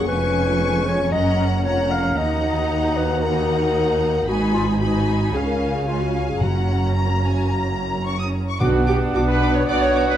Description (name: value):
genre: quick classical-period movement for symphony orchestra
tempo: 114 BPM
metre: 4/4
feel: straight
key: F# major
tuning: A4 = 442 Hz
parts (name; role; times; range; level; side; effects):
- rich chamber violin section; melody; 0.0-10.0 s; G#5 to D6; -31 LUFS; left 3 dB; none
- dark clarinet; second line; 0.0-10.2 s; D4 to E#5; -24 LUFS; left 2 dB; none
- rich chamber violin section; second line; 0.0-10.2 s; D4 to D#6; -29 LUFS; left 3 dB; none
- rich studio viola section; accompaniment; 0.0-10.1 s; C#4 to D5; -26 LUFS; right 2 dB; none
- mellow French horn section; sustained chords; 0.0-10.2 s; G#3 to F#4; -28 LUFS; left 4 dB; none
- rich chamber double bass section; bass; 0.0-10.2 s; E#1 to D#2; -24 LUFS; right 2 dB; none
- warm chamber cello section; bass; 0.0-10.2 s; D#2 to C#3; -24 LUFS; right 2 dB; none
- timpani; percussion; 6.4-9.4 s; F#2 to B2; -26 LUFS; equal; none
- warm oboe; second line; 8.6-10.2 s; F#5; -28 LUFS; right 5 dB; none
- clear bassoon; accompaniment; 8.6-10.2 s; B3; -26 LUFS; right 3 dB; none
room: wet recital hall reverb, RT60 1.5 s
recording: dark, warm production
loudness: -18 LUFS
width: side -10 dB against mid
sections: 0.0-8.6 A section; 8.6-10.2 B section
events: none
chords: 0.1 C#7/E#; 1.1 F#; 2.2 D#m; 4.3 G#m7; 5.3 C#; 6.4 F#; 8.6 Bm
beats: | 0.08 0.60 1.13 1.65 | 2.17 2.70 3.23 3.75 | 4.28 4.80 5.33 5.87 | 6.41 6.96 7.51 8.05 | 8.60 9.14 9.68